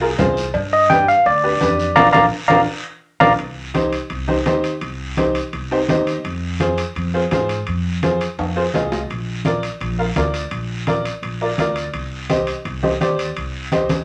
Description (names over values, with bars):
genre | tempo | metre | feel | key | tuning
latin, cumbia | 168 BPM | 4/4 | straight | C minor | A4 = 440 Hz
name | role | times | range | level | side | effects
bright upright piano | accompaniment | 0.0-13.9 s | D4 to G5 | -23 LUFS | equal | none
upright bass | bass | 0.0-13.9 s | Bb1 to Ab2 | -28 LUFS | equal | none
congas | percussion | 0.2-14.0 s | none | -25 LUFS | equal | none
cowbell and timbales | percussion | 0.2-14.0 s | none | -30 LUFS | equal | none
guiro | percussion | 0.2-14.0 s | none | -35 LUFS | equal | none
bright tine electric piano | melody | 0.7-3.3 s | D5 to Bb5 | -15 LUFS | equal | none
room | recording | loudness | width
wet studio ambience, RT60 0.5 s | none | -19 LUFS | mono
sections
0.0-3.4 A section; 3.4-14.0 B section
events
band accent 2.0-3.4; upright piano fill 2.7-3.4, 5.5-6.2; drum fill 8.4-9.1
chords
0.0 Fm; 0.5 G7; 2.0 Bb; 3.4 Cm; 6.2 Fm; 9.1 Bb; 11.9 Cm